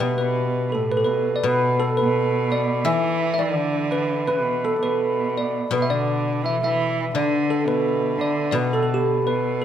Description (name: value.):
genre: chinese traditional, Chinese chamber ensemble.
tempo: 85 BPM.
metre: 2/4.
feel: rubato.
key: unclear.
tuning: A4 = 440 Hz.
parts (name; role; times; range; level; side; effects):
bell-like tine electric piano; melody; 0.0-9.6 s; G4 to E5; -24 LUFS; left 1 dB; fast stereo tremolo.
clear cello; second line; 0.0-9.6 s; A2 to E3; -26 LUFS; right 4 dB; none.
hammered dulcimer; second line; 0.0-9.6 s; G4 to E5; -25 LUFS; right 4 dB; none.
guzheng; accompaniment; 0.0-9.6 s; B2 to D4; -26 LUFS; left 6 dB; none.
room: moderate recital hall reverb, RT60 1.6 s.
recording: none.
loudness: -19 LUFS.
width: side -10 dB against mid.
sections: 0.0-9.6 A section.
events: none.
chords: none.